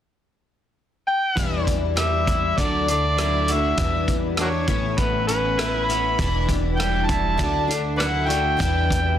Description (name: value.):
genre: folk rock and heartland rock.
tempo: 100 BPM.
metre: 4/4.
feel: straight.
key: E dorian.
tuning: A4 = 440 Hz.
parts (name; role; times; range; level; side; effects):
overdriven harmonica; melody; 1.1-9.2 s; F#4 to B5; -23 LUFS; equal; plate reverb.
picked plugged-in twelve-string acoustic guitar; accompaniment; 1.4-9.2 s; E2 to E4; -28 LUFS; left 6 dB; ensemble chorus, plate reverb.
electric guitar at the edge of break-up; riff; 1.4-9.2 s; E2 to F#4; -27 LUFS; right 1 dB; vibrato effect.
upright bass; bass; 1.4-9.2 s; E1 to E2; -26 LUFS; equal; none.
vintage drum kit; drums; 1.4-9.0 s; hi-hat, kick drum, rim click; -26 LUFS; equal; soft clipping on snare.
room: moderate small room reverb, RT60 0.5 s.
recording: dense, heavily limited modern master.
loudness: -19 LUFS.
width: side -10 dB against mid.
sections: 0.0-1.4 A section; 1.4-9.2 B section.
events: none.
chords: 0.0 N.C.; 1.4 Em7; 2.6 Dadd9; 3.8 Em7; 4.7 Aadd9; 6.2 Em7; 7.4 Dadd9; 8.6 Em7.